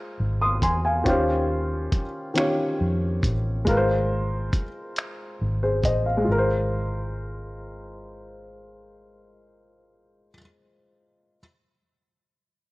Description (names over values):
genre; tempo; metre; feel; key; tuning
slow six-eight R&B; 46 BPM (dotted quarters); 6/8; straight; Ab major; A4 = 438 Hz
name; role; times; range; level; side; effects
dark baby grand piano; accompaniment; 0.0-11.4 s; Eb3 to Eb6; -25 LUFS; equal; none
vintage muted fingered electric bass; bass; 0.2-10.3 s; Ab1 to F2; -26 LUFS; equal; none
dusty soul sampler-style drum kit; drums; 0.6-6.0 s; finger snaps, hi-hat, kick drum; -26 LUFS; equal; none
room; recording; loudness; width
light reverb, digital ambience; worn, warbling old tape, cassette tape, warbly pitch drift; -22 LUFS; side -20 dB against mid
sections
0.0-6.3 A section; 6.3-8.9 B section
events
none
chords
0.0 Ab69; 1.1 Eb13; 3.7 Ab69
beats
| 1.06 2.36 | 3.67 4.97 | 6.28 7.58